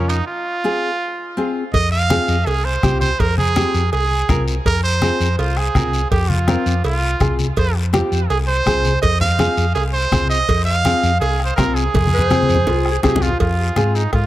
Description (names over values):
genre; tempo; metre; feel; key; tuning
latin, cumbia; 164 BPM; 4/4; straight; F minor; A4 = 439 Hz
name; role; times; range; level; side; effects
bright trumpet; melody; 0.0-14.3 s; Db4 to F5; -20 LUFS; right 3 dB; tape echo
nylon-string guitar; accompaniment; 0.0-14.0 s; C4 to Bb4; -22 LUFS; left 2 dB; none
hollow-body short-scale fingered electric bass; bass; 0.0-14.3 s; C2 to Ab2; -19 LUFS; equal; none
guiro; percussion; 0.1-14.3 s; none; -33 LUFS; left 5 dB; none
timbales and cowbell; percussion; 0.1-14.3 s; none; -27 LUFS; right 5 dB; none
bombo; percussion; 1.7-14.3 s; none; -22 LUFS; left 1 dB; none
congas; percussion; 1.7-14.3 s; none; -23 LUFS; left 2 dB; none
warm clarinet; second line; 12.1-13.4 s; F4 to C5; -23 LUFS; left 2 dB; tape echo
room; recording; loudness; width
moderate spring reverb, RT60 2.2 s; none; -15 LUFS; side -14 dB against mid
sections
0.0-1.7 A section; 1.7-13.4 B section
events
break 0.3-1.7; drum fill 11.9-13.4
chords
0.3 Fm